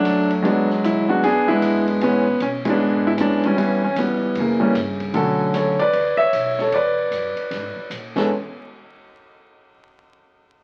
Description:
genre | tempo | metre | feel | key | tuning
jazz piano trio | 153 BPM | 4/4 | swing 64% on 8ths | A major | A4 = 440 Hz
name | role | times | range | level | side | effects
warm concert grand piano | melody | 0.0-8.3 s | C#3 to E5 | -20 LUFS | equal | none
upright bass | bass | 0.1-8.3 s | A1 to B2 | -38 LUFS | equal | none
open jazz drum kit | drums | 0.1-8.2 s | crash cymbal, hi-hat, kick drum, ride cymbal, snare drum | -36 LUFS | equal | none
room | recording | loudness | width
moderate large studio reverb, RT60 1.2 s | very old 78 rpm record, vinyl crackle | -20 LUFS | mono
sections
0.0-5.1 A section; 5.1-8.3 B section; 8.3-9.9 C section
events
band accent 2.6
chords
0.4 E9; 2.0 Amaj9; 3.6 C#m7b5; 4.4 F#7b9; 5.1 Bm7; 6.7 E9; 8.1 Amaj9; 8.3 N.C.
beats
0.05 | 0.44 0.83 1.23 1.62 | 2.01 2.40 2.79 3.19 | 3.58 3.97 4.36 4.75 | 5.15 5.54 5.93 6.33 | 6.72 7.11 7.50 7.90 | 8.29

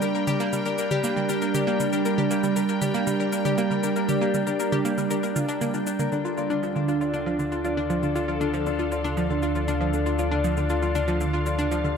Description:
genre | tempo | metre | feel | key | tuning
ambient, sequencer-driven space music | 118 BPM | 4/4 | straight | D minor | A4 = 440 Hz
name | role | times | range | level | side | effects
evolving wavetable pad | sustained chords | 0.0-12.0 s | D3 to G5 | -27 LUFS | right 5 dB | chorus, built-in reverb
Celtic harp | arpeggios | 0.0-12.0 s | D4 to G5 | -28 LUFS | left 6 dB | auto-pan, ping-pong delay
analog pluck | riff | 0.0-12.0 s | D3 to Bb4 | -28 LUFS | equal | chorus, ping-pong delay
electronic cabasa and toms | percussion | 0.0-11.9 s | none | -33 LUFS | equal | overdrive, ping-pong delay
round analog bass | bass | 6.1-12.0 s | D2 | -29 LUFS | left 1 dB | none
room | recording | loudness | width
wet spring reverb, RT60 2.2 s | echo-heavy mix | -22 LUFS | side -6 dB against mid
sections
0.0-6.1 A section; 6.1-12.0 B section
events
fade-in on drum 6.1-12.0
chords
0.0 Gm; 6.1 Dm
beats
| 0.02 0.53 1.04 1.54 | 2.05 2.56 3.07 3.58 | 4.09 4.60 5.10 5.61 | 6.12 6.63 7.14 7.65 | 8.15 8.66 9.17 9.68 | 10.19 10.70 11.21 11.71

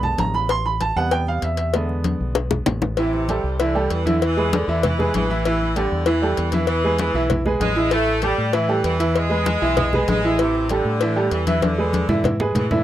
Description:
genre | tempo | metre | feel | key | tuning
latin, salsa | 194 BPM | 4/4 | straight | A minor | A4 = 439 Hz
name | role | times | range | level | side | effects
bright upright piano | accompaniment | 0.0-12.8 s | C3 to C6 | -22 LUFS | right 2 dB | none
deep dub fingered electric bass | bass | 0.0-12.8 s | A1 to A2 | -24 LUFS | equal | none
congas | percussion | 0.0-12.8 s | none | -25 LUFS | left 1 dB | none
cowbell and bongos | percussion | 0.2-12.7 s | none | -25 LUFS | left 8 dB | none
clear saxophone section | second line | 3.0-12.8 s | C3 to A3 | -24 LUFS | equal | none
room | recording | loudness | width
light reverb | dry, close 1970s-style studio recording | -18 LUFS | side -12 dB against mid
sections
0.0-3.0 A section; 3.0-12.8 B section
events
upright piano solo 0.0-3.0; drum fill 2.0-3.0, 11.6-12.8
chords
0.5 Am7; 1.7 E7; 3.0 Am7; 4.2 E7; 5.4 A5; 6.7 E; 7.9 A5; 9.2 E; 10.4 Am7; 11.6 E7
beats
0.19 | 0.50 0.81 1.12 1.43 | 1.74 2.05 2.36 2.67 | 2.98 3.29 3.59 3.90 | 4.21 4.52 4.83 5.14 | 5.45 5.76 6.07 6.37 | 6.68 6.99 7.30 7.61 | 7.92 8.23 8.54 8.84 | 9.15 9.46 9.77 10.08 | 10.39 10.70 11.01 11.32 | 11.63 11.94 12.25 12.56

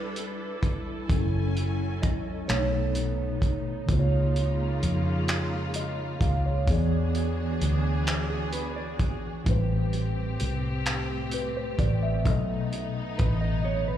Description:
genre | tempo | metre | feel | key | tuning
slow six-eight R&B | 43 BPM (dotted quarters) | 6/8 | straight | unclear | A4 = 440 Hz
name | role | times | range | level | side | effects
mellow tine electric piano | accompaniment | 0.0-14.0 s | A2 to E#5 | -30 LUFS | equal | medium stereo tremolo, slapback echo
warm studio string section | sustained chords | 0.0-14.0 s | C#3 to G#5 | -35 LUFS | equal | none
vintage muted fingered electric bass | bass | 0.0-14.0 s | E1 to E#2 | -28 LUFS | equal | none
cloth-damped thuddy drum kit | drums | 0.2-13.4 s | handclaps, hi-hat, kick drum | -28 LUFS | equal | none
mellow electric guitar | second line | 2.0-3.8, 8.3-14.0 s | G#4 to D#5 | -36 LUFS | right 7 dB | slapback echo
room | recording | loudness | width
studio reverb | live gig heard through the venue's PA, club reverb | -25 LUFS | side -11 dB against mid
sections
0.0-14.0 A section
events
none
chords
0.0 G69; 1.1 F#m7; 2.5 B9; 3.9 C#6; 6.7 E7; 9.5 Am9; 12.3 B7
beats
| 1.09 2.49 | 3.88 5.28 | 6.67 8.07 | 9.47 10.86 | 12.26 13.65

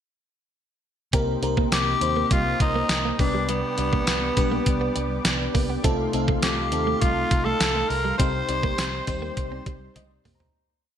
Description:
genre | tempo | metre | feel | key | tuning
1980s-style pop | 102 BPM | 4/4 | straight | C minor | A4 = 440 Hz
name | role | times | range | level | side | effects
FM electric piano with soft pad layer | accompaniment | 1.1-10.6 s | C3 to Bb5 | -28 LUFS | left 1 dB | chorus
warm analog pad | sustained chords | 1.1-10.5 s | Eb4 to D6 | -35 LUFS | right 2 dB | chorus
direct-recorded clean electric guitar | riff | 1.1-10.5 s | G3 to C4 | -33 LUFS | right 6 dB | analog chorus
vintage muted fingered electric bass | bass | 1.1-10.5 s | B1 to Eb2 | -30 LUFS | equal | none
clean 12-bit digital drum machine | drums | 1.1-10.5 s | hi-hat, kick drum, snare drum, tambourine, toms | -24 LUFS | equal | gated reverb
raspy tenor saxophone | melody | 1.7-9.9 s | B3 to C5 | -26 LUFS | left 2 dB | none
room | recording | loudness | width
moderate plate reverb, RT60 1.7 s | bright 1980s-style digital production | -21 LUFS | side -9 dB against mid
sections
1.1-10.5 chorus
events
fade-out 8.2-10.5; FM electric piano fill 9.7-10.5; drum fill 10.0-10.5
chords
1.1 Cm7; 3.2 G; 5.8 F7/C; 8.2 Cm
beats
| 1.13 1.72 2.31 2.90 | 3.49 4.08 4.66 5.25 | 5.84 6.43 7.02 7.61 | 8.19 8.78 9.37 9.96

